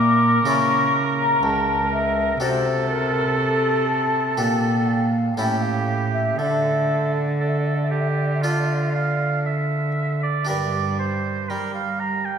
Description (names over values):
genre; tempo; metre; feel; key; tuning
classical, baroque-style sonata movement with continuo; 60 BPM; 4/4; straight; D minor; A4 = 440 Hz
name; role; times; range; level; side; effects
mellow hollow baroque flute; melody; 0.0-9.5 s; A4 to D6; -23 LUFS; left 3 dB; none
clear oboe; second line; 0.0-12.4 s; F4 to Bb5; -25 LUFS; right 4 dB; none
harpsichord; accompaniment; 0.0-12.4 s; C#2 to Bb4; -30 LUFS; equal; none
dark cello; bass; 0.0-12.4 s; C#2 to G3; -23 LUFS; right 1 dB; none
room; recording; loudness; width
wet church reverb, RT60 3.0 s; recorded in a church or concert hall; -19 LUFS; side -7 dB against mid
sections
0.0-10.5 A section; 10.5-12.4 A section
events
none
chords
0.5 A/C#; 2.4 D7/C; 4.4 Gm/Bb; 5.4 A7; 6.4 Dm; 10.5 Gm